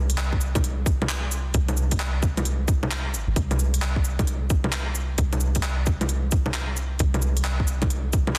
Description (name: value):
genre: future garage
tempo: 132 BPM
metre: 4/4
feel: swing 64% on 16ths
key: unclear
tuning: A4 = 440 Hz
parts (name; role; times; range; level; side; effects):
- soft 808-style bass; bass; 0.0-8.4 s; G1 to C2; -27 LUFS; equal; sidechain pumping
- garage drum kit; drums; 0.1-8.4 s; bongos, cabasa, handclaps, hi-hat; -30 LUFS; equal; soft clipping on snare
- electronic kick drum; drums; 0.3-8.2 s; none; -26 LUFS; equal; none
room: little or no reverb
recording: dense, heavily limited modern master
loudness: -24 LUFS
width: mono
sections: 0.0-8.4 A section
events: none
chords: none